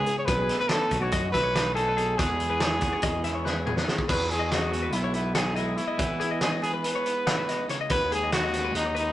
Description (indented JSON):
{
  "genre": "math rock and midwest emo",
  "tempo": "283 BPM (eighths)",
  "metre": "9/8",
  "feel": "straight",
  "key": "E major",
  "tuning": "A4 = 440 Hz",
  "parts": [
    { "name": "clear trumpet", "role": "melody", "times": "0.0-9.1 s", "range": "D#4 to C#5", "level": "-27 LUFS", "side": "equal", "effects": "none" },
    { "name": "twelve-string electric guitar", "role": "accompaniment", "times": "0.0-9.1 s", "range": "E2 to G#4", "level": "-36 LUFS", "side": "right 4 dB", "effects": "none" },
    { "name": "twelve-string electric guitar", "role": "arpeggios", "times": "0.0-9.1 s", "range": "G#4 to F#5", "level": "-32 LUFS", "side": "left 6 dB", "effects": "none" },
    { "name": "fuzz fingered electric bass", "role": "bass", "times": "0.0-9.1 s", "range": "B1 to E3", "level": "-31 LUFS", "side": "equal", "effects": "overdrive" },
    { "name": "loose indie drum kit", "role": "drums", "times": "0.1-9.1 s", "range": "crash cymbal, hi-hat, kick drum, snare drum, toms", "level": "-29 LUFS", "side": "equal", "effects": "none" }
  ],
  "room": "moderate stone room reverb, RT60 1.3 s",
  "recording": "rough rehearsal-room recording, nothing above 10.9 kHz",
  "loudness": "-24 LUFS",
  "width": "side -13 dB against mid",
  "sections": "0.0-4.1 A section; 4.1-9.1 B section",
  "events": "drum fill 3.5-4.1",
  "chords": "0.3 B7; 2.2 Eadd9; 4.1 Emaj7; 7.9 G#7sus4/D#"
}